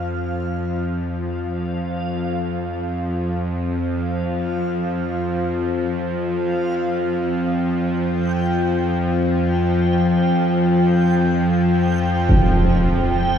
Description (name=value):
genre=dark ambient drone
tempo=free time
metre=none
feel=none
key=unclear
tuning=A4 = 440 Hz
part: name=bowed-like drone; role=drone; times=0.0-13.4 s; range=F2 to F3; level=-19 LUFS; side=left 1 dB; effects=built-in reverb
part: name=backwards swelling texture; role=texture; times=0.0-13.4 s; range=F5 to G5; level=-28 LUFS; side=right 2 dB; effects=built-in reverb, shimmer reverb
part: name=impact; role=percussion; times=12.3-12.5 s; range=none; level=-17 LUFS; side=right 1 dB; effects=low-pass filter on sfx
room=wet plate reverb, RT60 3.4 s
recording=none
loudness=-18 LUFS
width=side -8 dB against mid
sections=0.0-13.4 A section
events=fade-in on synth drone 0.0-13.4; fade-in on synth texture 0.0-13.4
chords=0.0 Fsus2